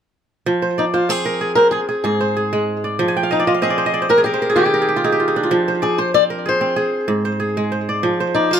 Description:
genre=west african traditional, West African string and xylophone music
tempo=95 BPM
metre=4/4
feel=straight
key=F dorian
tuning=A4 = 444 Hz
part: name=kora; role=arpeggios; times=0.5-8.6 s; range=Ab2 to Ab5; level=-18 LUFS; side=right 2 dB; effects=tape echo
part: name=fingerpicked swing-style acoustic guitar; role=melody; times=0.8-8.6 s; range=Eb4 to D5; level=-18 LUFS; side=left 2 dB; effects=none
room=moderate small room reverb, RT60 0.6 s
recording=close, detailed microphones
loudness=-15 LUFS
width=side -8 dB against mid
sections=0.5-8.6 A section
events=kora fill 3.1-5.5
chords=0.5 Fm; 1.7 Ab; 3.0 F5; 4.2 N.C.; 5.5 Fm; 6.8 Ab; 8.0 Fm

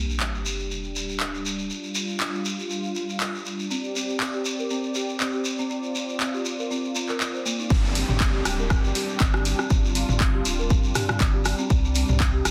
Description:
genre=afro house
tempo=120 BPM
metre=4/4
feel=swing 54% on 16ths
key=unclear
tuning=A4 = 439 Hz
part: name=warm analog pad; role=sustained chords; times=0.0-12.5 s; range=C3 to D5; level=-34 LUFS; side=equal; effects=chorus, sidechain pumping
part: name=sub drop and downlifter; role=sound effects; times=0.0-1.7, 7.7-11.7 s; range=none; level=-36 LUFS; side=equal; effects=none
part: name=shekere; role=percussion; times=0.1-12.5 s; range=none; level=-34 LUFS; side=equal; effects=none
part: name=house drum kit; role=drums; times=0.2-12.5 s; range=handclaps, hi-hat, rim click, toms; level=-30 LUFS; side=equal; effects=none
part: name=folk marimba with medium mallets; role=arpeggios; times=3.7-12.4 s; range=Bb3 to C5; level=-33 LUFS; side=equal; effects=sidechain pumping, digital delay
part: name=warm sub bass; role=bass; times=7.7-12.5 s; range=D1 to C2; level=-28 LUFS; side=equal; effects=sidechain pumping
part: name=electronic kick drum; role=drums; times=7.7-12.3 s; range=none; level=-24 LUFS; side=equal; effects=none
room=moderate plate reverb, RT60 1.3 s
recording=dense, heavily limited modern master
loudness=-25 LUFS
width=mono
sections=0.0-7.7 A section; 7.7-12.5 B section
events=impact 0.0-1.7; filter sweep on analog synth pad 0.0-7.7; drop 7.7-12.5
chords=0.0 G5; 3.7 Csus2; 7.7 G5; 11.7 Csus2

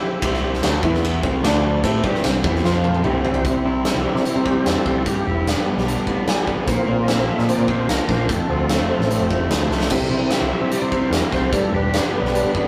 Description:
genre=classic rock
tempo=149 BPM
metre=4/4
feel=straight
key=C major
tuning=A4 = 440 Hz
part: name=warm upright piano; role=accompaniment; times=0.0-3.4, 9.9-12.7 s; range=D4 to F5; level=-28 LUFS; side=equal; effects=none
part: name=tonewheel organ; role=sustained chords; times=0.0-12.7 s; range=D3 to E5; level=-28 LUFS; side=equal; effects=overdrive, chorus vibrato, fast rotary speaker
part: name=crunchy overdriven guitar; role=riff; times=0.2-12.7 s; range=F2 to A4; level=-28 LUFS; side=equal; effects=none
part: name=overdriven semi-hollow guitar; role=riff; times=0.2-12.7 s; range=C3 to C5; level=-31 LUFS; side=equal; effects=none
part: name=growling picked electric bass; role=bass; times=0.2-12.7 s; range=E1 to C3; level=-25 LUFS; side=equal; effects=overdrive
part: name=big rock drum kit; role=drums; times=0.2-12.6 s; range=crash cymbal, hi-hat, kick drum, ride cymbal, snare drum, toms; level=-25 LUFS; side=equal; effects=none
room=moderate studio reverb, RT60 0.6 s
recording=rough rehearsal-room recording, tube saturation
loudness=-20 LUFS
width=mono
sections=0.0-3.5 A section; 3.5-12.7 B section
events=drum fill 2.6-3.5, 9.7; tonewheel organ solo 3.5-12.7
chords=0.0 C; 0.8 E5; 1.2 C; 1.4 D5; 1.8 C; 2.6 F5; 3.0 C; 5.1 G; 6.7 Bbsus2; 8.3 F; 9.9 C; 11.5 G

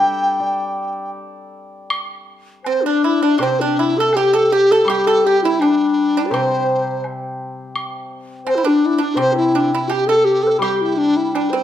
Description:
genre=chinese traditional, Chinese chamber ensemble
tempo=82 BPM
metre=4/4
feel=rubato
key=G zhi mode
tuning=A4 = 440 Hz
part: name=mellow hollow large dizi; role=melody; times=0.0-11.6 s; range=D4 to G5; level=-17 LUFS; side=right 1 dB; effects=none
part: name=hammered dulcimer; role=accompaniment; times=0.0-11.6 s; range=C3 to D5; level=-25 LUFS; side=left 2 dB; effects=none
part: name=woodblock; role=percussion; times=1.9-11.5 s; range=none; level=-27 LUFS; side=equal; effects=none
part: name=xiao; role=second line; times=2.6-11.6 s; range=D4 to D5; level=-20 LUFS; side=left 6 dB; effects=none
part: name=pipa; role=second line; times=2.7-11.6 s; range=C4 to A4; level=-23 LUFS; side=right 6 dB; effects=none
room=moderate recital hall reverb, RT60 1.4 s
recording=dark, warm production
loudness=-14 LUFS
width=side -11 dB against mid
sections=0.0-1.9 A section; 1.9-11.6 B section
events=none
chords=none

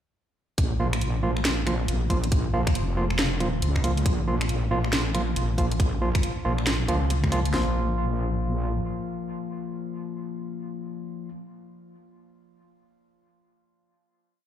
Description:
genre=deep dubstep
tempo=138 BPM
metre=4/4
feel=swing 62% on 16ths, half-time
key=Bb minor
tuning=A4 = 438 Hz
part: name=wobble bass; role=bass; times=0.6-8.8 s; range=F1 to Db2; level=-25 LUFS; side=equal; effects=chorus
part: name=garage drum kit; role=drums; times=0.6-7.7 s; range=kick drum, snare drum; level=-24 LUFS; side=equal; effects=overdrive
part: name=garage drum kit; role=drums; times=0.6-7.5 s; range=finger snaps, hi-hat, snare drum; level=-29 LUFS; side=equal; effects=overdrive
part: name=overdriven tine electric piano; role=stabs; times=0.8-11.3 s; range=F3 to F4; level=-29 LUFS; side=equal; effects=dub echo
room=light reverb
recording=played on a big sound system in a bare room, large studio reverb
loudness=-23 LUFS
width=side -10 dB against mid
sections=0.6-7.5 drop; 7.5-11.0 final chord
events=drop 0.6-7.5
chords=0.6 Bb5

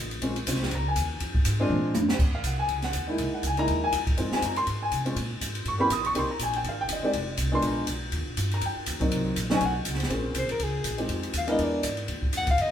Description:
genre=jazz, small-group swing and bop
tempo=243 BPM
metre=4/4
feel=swing 57% on 8ths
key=Bb minor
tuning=A4 = 440 Hz
part: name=upright bass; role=bass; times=0.0-12.7 s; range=F1 to C3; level=-31 LUFS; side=equal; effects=none
part: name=open jazz drum kit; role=drums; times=0.1-12.6 s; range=crash cymbal, hi-hat, kick drum, ride cymbal, snare drum, toms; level=-29 LUFS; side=equal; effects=none
part: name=dark grand piano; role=accompaniment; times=0.2-11.8 s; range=Gb3 to Eb6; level=-27 LUFS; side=left 1 dB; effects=none
part: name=warm soprano saxophone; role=melody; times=10.4-12.7 s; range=Ab4 to Gb5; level=-28 LUFS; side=left 2 dB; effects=none
room=wet stone room reverb, RT60 1.2 s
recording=band playing live in one room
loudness=-24 LUFS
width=side -10 dB against mid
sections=0.0-2.2 A section; 2.2-10.1 A section; 10.1-12.7 A section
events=drum fill 1.7-2.2; soprano saxophone solo 10.1-12.7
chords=0.2 Bbm7; 1.7 Bb7; 2.2 C7alt; 4.2 Fm7; 5.2 Absus2; 5.7 A9; 6.2 Abmaj9; 7.1 Fm; 7.6 Bb7b9; 8.1 Eb69; 9.1 Cm7b5; 9.6 Bsus2; 10.1 Bbm7; 11.1 Fm7; 11.6 E7#11; 12.1 Eb7sus2

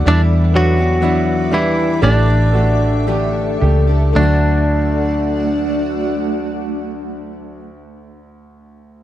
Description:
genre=pop ballad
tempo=55-63 BPM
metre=4/4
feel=straight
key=D major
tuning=A4 = 440 Hz
part: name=clear concert grand piano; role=accompaniment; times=0.0-9.0 s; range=D2 to G4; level=-23 LUFS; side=right 2 dB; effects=none
part: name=granular cloud pad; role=sustained chords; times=0.0-7.6 s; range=A3 to D6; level=-24 LUFS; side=right 1 dB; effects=built-in reverb
part: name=picked steel-string acoustic guitar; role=arpeggios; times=0.0-7.7 s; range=A2 to G4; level=-25 LUFS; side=left 10 dB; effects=none
part: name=vintage muted fingered electric bass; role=bass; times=0.0-7.6 s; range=A1 to E2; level=-16 LUFS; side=equal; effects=none
part: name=direct-recorded clean electric guitar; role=melody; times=0.1-7.6 s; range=E3 to D5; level=-19 LUFS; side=equal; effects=tape echo
room=little or no reverb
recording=dry, close 1970s-style studio recording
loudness=-13 LUFS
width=side -12 dB against mid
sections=0.0-4.2 A section; 4.2-8.5 B section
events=slowing down 0.0-4.2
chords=0.1 Em7; 2.0 A7sus4; 4.2 D

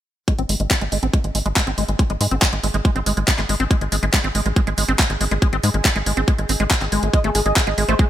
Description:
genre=psychedelic trance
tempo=140 BPM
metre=4/4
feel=straight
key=unclear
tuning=A4 = 440 Hz
part: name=liquid acid bass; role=riff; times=0.3-8.1 s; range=G#3 to B#3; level=-24 LUFS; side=moving between left 5 dB and right 4 dB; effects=chorus, auto-pan, sidechain pumping, digital delay
part: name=electronic kick drum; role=drums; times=0.3-8.1 s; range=none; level=-18 LUFS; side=equal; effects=overdrive
part: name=garage drum kit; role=drums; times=0.3-8.1 s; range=handclaps, hi-hat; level=-22 LUFS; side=equal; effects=overdrive
part: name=warbly tape-like pad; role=texture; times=1.8-8.1 s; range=G#4 to G#5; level=-33 LUFS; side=right 1 dB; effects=chorus, built-in reverb, phaser, sidechain pumping
part: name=tight sequencer bass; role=bass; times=0.4-8.0 s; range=G#1 to G#2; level=-22 LUFS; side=equal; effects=none
part: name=wide unison lead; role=melody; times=7.1-8.0 s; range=G#4 to D#5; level=-23 LUFS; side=right 1 dB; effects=phaser, sidechain pumping, digital delay
room=digital ambience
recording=none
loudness=-17 LUFS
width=side -12 dB against mid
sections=0.3-8.1 A section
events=fade-in on ambient pad 0.3-8.1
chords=0.3 G#5

